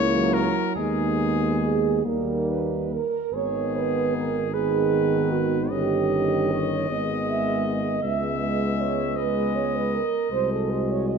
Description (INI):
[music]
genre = classical, hymn-like piece for brass band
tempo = 46-54 BPM (dotted quarters)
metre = 6/8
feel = rubato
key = G# minor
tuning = A4 = 439 Hz
[part]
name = clear cornet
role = melody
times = 0.0-11.2 s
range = G#4 to E5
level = -30 LUFS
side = left 6 dB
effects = none
[part]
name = mellow French horn section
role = second line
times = 0.0-11.2 s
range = D#4 to E5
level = -26 LUFS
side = right 7 dB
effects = none
[part]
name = warm euphonium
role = accompaniment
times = 0.0-11.2 s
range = A#3 to F#4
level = -30 LUFS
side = left 4 dB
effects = none
[part]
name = mellow tuba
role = bass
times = 0.0-11.2 s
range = G1 to D#2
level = -28 LUFS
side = equal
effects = none
[part]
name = mellow trombone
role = accompaniment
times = 0.1-11.2 s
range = D#3 to G#3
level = -29 LUFS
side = right 3 dB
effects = none
[sound]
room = moderate recital hall reverb, RT60 1.5 s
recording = dark, warm production, nothing above 7.8 kHz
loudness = -22 LUFS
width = side -6 dB against mid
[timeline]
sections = 0.0-3.3 A section; 3.3-11.2 B section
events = none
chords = 0.0 A#dim/C#; 0.8 G#m/D#; 2.0 D#; 3.3 G#m; 5.7 D#7/G; 6.9 G#m; 8.0 C#m7; 10.3 G#7/B#